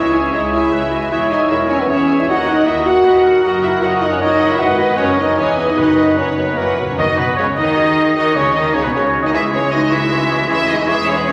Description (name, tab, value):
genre	classical, dramatic, fast romantic movement for symphony orchestra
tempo	154 BPM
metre	3/4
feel	straight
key	B major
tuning	A4 = 441 Hz
part	clear symphonic violin section	melody	0.0-11.3 s	A#4 to A#5	-26 LUFS	equal	none
part	clear symphonic violin section	second line	0.0-11.3 s	G#3 to F#5	-27 LUFS	equal	none
part	warm clarinet	second line	0.0-11.3 s	D#4 to B4	-27 LUFS	equal	none
part	warm oboe	second line	0.0-11.3 s	G#4 to D#5	-24 LUFS	equal	none
part	clear bassoon	accompaniment	0.0-11.3 s	B2 to G#3	-28 LUFS	equal	none
part	rich symphonic viola section	accompaniment	0.0-11.3 s	C#3 to F#5	-26 LUFS	equal	none
part	warm French horn section	sustained chords	0.0-11.3 s	A#3 to F#4	-18 LUFS	equal	none
part	clear symphonic cello section	bass	0.0-11.3 s	C#2 to D#3	-31 LUFS	equal	none
part	rich symphonic double bass section	bass	0.0-11.3 s	E1 to D#2	-31 LUFS	equal	none
part	timpani	percussion	5.8-7.0 s	F#2	-32 LUFS	equal	none
part	bright large flute ensemble	second line	7.0-11.3 s	B4 to C#6	-28 LUFS	equal	none
room	wet scoring stage reverb, RT60 1.9 s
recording	vinyl crackle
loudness	-15 LUFS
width	mono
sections	0.0-7.0 A section; 7.0-11.3 A section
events	timpani fill 6.6-7.0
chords	0.0 C#m; 1.1 C#m/E; 2.3 D#m; 3.4 D#m/F#; 4.6 G#m7; 5.4 Emaj7; 5.8 F#sus4; 6.6 F#; 7.0 B; 9.3 C#m; 10.5 C#m/E